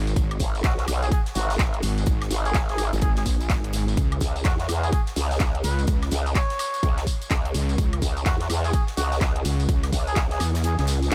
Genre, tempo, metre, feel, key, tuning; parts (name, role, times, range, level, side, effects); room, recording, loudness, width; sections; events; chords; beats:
bass house; 126 BPM; 4/4; swing 62% on 16ths; A4 = 440 Hz
wobble bass; bass; 0.0-11.1 s; G#1 to E2; -26 LUFS; equal; chorus, overdrive, sidechain pumping
house drum kit; drums; 0.1-11.1 s; handclaps, hi-hat, tambourine, woodblock; -34 LUFS; equal
electronic kick drum; drums; 0.2-10.3 s; -26 LUFS; equal
tight metal drum kit; drums; 0.2-11.1 s; hi-hat, snare drum; -45 LUFS; equal; sidechain pumping on hats, high-pass filter on hats, high-pass filter on snare, high-pass filter on room
growl bass; bass; 0.4-11.1 s; G#1 to E2; -27 LUFS; equal; chorus, overdrive, sidechain pumping
trumpet with cup mute; melody; 0.6-10.8 s; F#4 to C#5; -35 LUFS; equal; delay
small room reverb; -24 LUFS; mono
0.0-11.1 A section
kick drops out 10.6-11.1
0.0 N.C.; 4.0 C#m
| 0.16 0.64 1.12 1.59 | 2.07 2.54 3.02 3.50 | 3.97 4.45 4.92 5.40 | 5.88 6.35 6.83 7.31 | 7.78 8.26 8.73 9.21 | 9.69 10.16 10.64 11.12